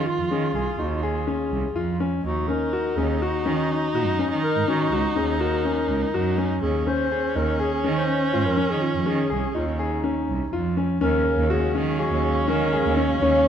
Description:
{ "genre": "contemporary instrumental, chamber music in an uneven meter", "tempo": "246 BPM (eighths)", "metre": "9/8", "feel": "straight", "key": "Eb dorian", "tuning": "A4 = 440 Hz", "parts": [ { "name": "dark clarinet", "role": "melody", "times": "0.0-13.5 s", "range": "Eb4 to Db5", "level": "-27 LUFS", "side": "left 2 dB", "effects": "none" }, { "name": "rich viola", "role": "second line", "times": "0.0-13.5 s", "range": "Db4 to F4", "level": "-27 LUFS", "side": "right 1 dB", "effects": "none" }, { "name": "bright cello", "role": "bass", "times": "0.0-13.4 s", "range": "C2 to Eb3", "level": "-26 LUFS", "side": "right 4 dB", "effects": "none" }, { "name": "clear concert grand piano", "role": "arpeggios", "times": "0.3-13.5 s", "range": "Db4 to Ab4", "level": "-27 LUFS", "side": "left 5 dB", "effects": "none" }, { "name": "muted symphonic string section", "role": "sustained chords", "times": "11.0-13.5 s", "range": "Db3 to F5", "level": "-32 LUFS", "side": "left 1 dB", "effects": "none" } ], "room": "light reverb", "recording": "dark, warm production", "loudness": "-21 LUFS", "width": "side -8 dB against mid", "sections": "0.0-11.0 A section; 11.0-13.5 B section", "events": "none", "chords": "0.0 Dbadd9; 2.2 Ebm7; 6.6 Dbadd9/Eb; 11.0 Ebm11" }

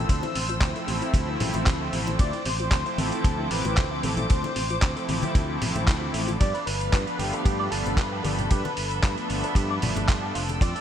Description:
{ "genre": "nu-disco, nu disco", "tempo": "114 BPM", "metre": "4/4", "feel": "swing 53% on 16ths", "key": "unclear", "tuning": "A4 = 439 Hz", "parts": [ { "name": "wide unison lead", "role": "melody", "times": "0.0-10.8 s", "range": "G4 to D5", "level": "-33 LUFS", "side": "left 1 dB", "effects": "lush chorus, ping-pong delay" }, { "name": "warm analog pad", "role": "accompaniment", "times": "0.0-10.7 s", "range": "F3 to E4", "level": "-30 LUFS", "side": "equal", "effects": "chorus, sidechain pumping, ping-pong delay" }, { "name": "warm studio string section", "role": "sustained chords", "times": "0.0-10.8 s", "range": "A4 to E6", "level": "-34 LUFS", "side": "left 1 dB", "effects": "sidechain pumping" }, { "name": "analog pluck", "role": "arpeggios", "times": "0.0-6.4 s", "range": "C3 to A3", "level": "-37 LUFS", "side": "left 2 dB", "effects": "chorus, sidechain pumping, ping-pong delay" }, { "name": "fingered electric bass", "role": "bass", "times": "0.0-10.7 s", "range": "F1 to G2", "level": "-30 LUFS", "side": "equal", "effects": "none" }, { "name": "dusty soul sampler-style drum kit", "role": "drums", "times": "0.1-10.8 s", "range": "handclaps, hi-hat, ride cymbal", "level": "-32 LUFS", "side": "right 1 dB", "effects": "studio ambience" }, { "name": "kick drum", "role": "drums", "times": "0.1-10.7 s", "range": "none", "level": "-22 LUFS", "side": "equal", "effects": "studio ambience" }, { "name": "congas", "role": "percussion", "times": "0.2-10.6 s", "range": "none", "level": "-33 LUFS", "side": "left 3 dB", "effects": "none" }, { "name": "electric guitar with an envelope filter", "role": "riff", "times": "6.4-10.8 s", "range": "F4 to D5", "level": "-35 LUFS", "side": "right 2 dB", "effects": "analog chorus" } ], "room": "light reverb, small room ambience", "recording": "bright 1980s-style digital production", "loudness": "-23 LUFS", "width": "side -10 dB against mid", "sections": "0.0-10.8 A section", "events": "none", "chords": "0.0 Dm9; 6.4 G9" }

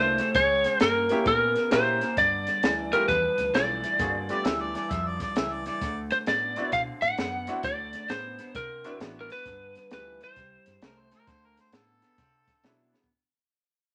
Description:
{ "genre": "electric blues shuffle", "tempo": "132 BPM", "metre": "4/4", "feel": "swing 65% on 8ths", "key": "unclear", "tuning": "A4 = 440 Hz", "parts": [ { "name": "lightly driven lead guitar", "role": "melody", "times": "0.0-11.5 s", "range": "A#4 to F#5", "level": "-27 LUFS", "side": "equal", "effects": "none" }, { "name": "bright upright piano", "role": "accompaniment", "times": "0.0-12.9 s", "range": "F#3 to A4", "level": "-36 LUFS", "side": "equal", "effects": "none" }, { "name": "electric guitar through a small old amp", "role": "riff", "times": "0.0-13.1 s", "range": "G2 to C4", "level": "-38 LUFS", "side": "equal", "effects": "none" }, { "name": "vintage muted fingered electric bass", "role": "bass", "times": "0.0-12.9 s", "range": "G1 to C3", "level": "-42 LUFS", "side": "equal", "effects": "none" }, { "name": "compact cocktail drum kit", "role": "drums", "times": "0.2-13.1 s", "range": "hi-hat, kick drum, snare drum", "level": "-33 LUFS", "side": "equal", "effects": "none" }, { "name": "warm harmonica", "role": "second line", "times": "4.3-6.0, 10.8-13.0 s", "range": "A4 to E5", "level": "-34 LUFS", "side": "equal", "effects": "overdrive" } ], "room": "moderate studio reverb, RT60 0.7 s", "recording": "none", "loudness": "-26 LUFS", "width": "mono", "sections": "0.0-13.1 A section", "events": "fade-out 0.0-13.1; drum fill 12.9", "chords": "0.4 C#dim7; 2.2 G9; 5.8 D9; 9.5 G9; 10.4 C5; 11.3 D9" }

